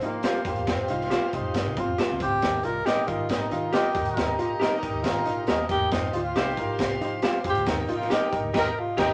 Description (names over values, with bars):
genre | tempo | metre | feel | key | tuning
uptempo 1960s-style soul | 137 BPM | 4/4 | straight | Eb major | A4 = 442 Hz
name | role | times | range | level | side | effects
breathy tenor saxophone | melody | 0.0-9.1 s | Bb3 to Bb4 | -31 LUFS | equal | none
warm studio string section | second line | 0.0-9.1 s | Eb4 to C6 | -35 LUFS | equal | none
bright upright piano | accompaniment | 0.0-9.1 s | Eb3 to C5 | -36 LUFS | equal | none
hollow-body jazz guitar | riff | 0.0-8.5 s | Bb3 to G4 | -36 LUFS | equal | none
vintage muted fingered electric bass | bass | 0.0-9.1 s | Bb1 to F3 | -38 LUFS | equal | none
raw garage drum kit | drums | 0.0-9.1 s | crash cymbal, hi-hat, kick drum, snare drum | -31 LUFS | equal | none
electric guitar through a small old amp | stabs | 0.2-9.1 s | G4 to F5 | -33 LUFS | equal | spring reverb
room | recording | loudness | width
moderate studio reverb, RT60 0.5 s | none | -26 LUFS | mono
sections
0.0-9.1 A section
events
tenor saxophone solo 0.0-9.1; band accent 8.5-9.1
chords
0.0 Fsus2; 2.4 Eb; 5.9 Fsus2; 7.7 Eb